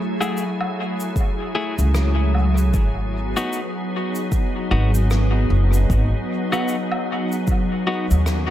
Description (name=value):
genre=ambient dub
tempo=76 BPM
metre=4/4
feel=swing 60% on 16ths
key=unclear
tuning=A4 = 440 Hz
part: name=soft additive organ-like pad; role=sustained chords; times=0.0-8.5 s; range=F#3 to G#4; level=-24 LUFS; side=equal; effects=ensemble chorus, built-in reverb
part: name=clean electric guitar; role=stabs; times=0.2-8.1 s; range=A3 to G#4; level=-28 LUFS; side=left 3 dB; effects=dub echo
part: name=woodblock, cabasa and rim click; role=drums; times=0.2-8.5 s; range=none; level=-30 LUFS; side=right 1 dB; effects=dub echo
part: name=electronic kick drum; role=drums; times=1.2-7.7 s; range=none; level=-21 LUFS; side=equal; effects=none
part: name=upright bass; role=bass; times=1.8-8.5 s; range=F#1 to D#2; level=-18 LUFS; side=equal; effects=none
room=light reverb, small room ambience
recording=none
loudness=-18 LUFS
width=side -12 dB against mid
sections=0.0-8.5 A section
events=none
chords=0.0 F#m9; 2.7 G#m7